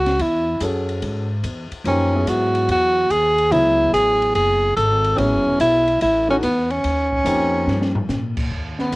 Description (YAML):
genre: modal jazz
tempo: 144 BPM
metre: 4/4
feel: swing 67% on 8ths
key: unclear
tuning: A4 = 440 Hz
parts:
  - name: warm tenor saxophone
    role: melody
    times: 0.0-9.0 s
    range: B3 to A4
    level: -17 LUFS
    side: equal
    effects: none
  - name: upright bass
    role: bass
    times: 0.0-9.0 s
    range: E1 to A#2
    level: -24 LUFS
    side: equal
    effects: none
  - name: open jazz drum kit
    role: drums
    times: 0.1-9.0 s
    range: crash cymbal, hi-hat, kick drum, ride cymbal, snare drum, toms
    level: -30 LUFS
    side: left 1 dB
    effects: cassette tape
  - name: warm baby grand piano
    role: accompaniment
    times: 0.6-7.9 s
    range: E3 to A4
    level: -25 LUFS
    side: left 1 dB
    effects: cassette tape, plate reverb
room: moderate booth ambience, RT60 0.2 s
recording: home recording on cassette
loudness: -16 LUFS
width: side -22 dB against mid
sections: 0.0-8.5 A section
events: drum fill 7.7-8.1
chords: 0.0 C#m; 1.9 F#m9; 6.8 D#7